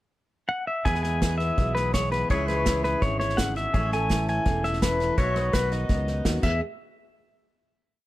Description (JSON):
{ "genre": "honky-tonk and classic country", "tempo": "167 BPM", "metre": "4/4", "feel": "straight", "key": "E major", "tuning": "A4 = 440 Hz", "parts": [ { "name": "pedal steel guitar", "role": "melody", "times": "0.5-6.6 s", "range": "B4 to G#5", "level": "-27 LUFS", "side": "left 1 dB", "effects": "none" }, { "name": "picked steel-string acoustic guitar", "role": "accompaniment", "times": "0.9-6.6 s", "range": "E2 to G#4", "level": "-31 LUFS", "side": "left 1 dB", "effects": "none" }, { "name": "pedal steel guitar", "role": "sustained chords", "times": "0.9-6.4 s", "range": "F#4 to E5", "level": "-35 LUFS", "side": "right 1 dB", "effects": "none" }, { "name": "fingered electric bass", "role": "bass", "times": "0.9-6.6 s", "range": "E1 to E2", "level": "-28 LUFS", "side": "equal", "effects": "none" }, { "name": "unplugged drum kit", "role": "drums", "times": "0.9-6.5 s", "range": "crash cymbal, hi-hat, kick drum, snare drum", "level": "-27 LUFS", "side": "equal", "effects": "none" } ], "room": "little or no reverb", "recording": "dark, warm production", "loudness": "-22 LUFS", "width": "side -16 dB against mid", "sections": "0.0-0.9 pickup bar; 0.9-6.6 A section; 6.6-8.0 final hit", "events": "none", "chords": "0.0 N.C.; 0.9 E; 2.3 C#m; 3.7 A; 5.2 B; 6.4 E; 6.6 N.C." }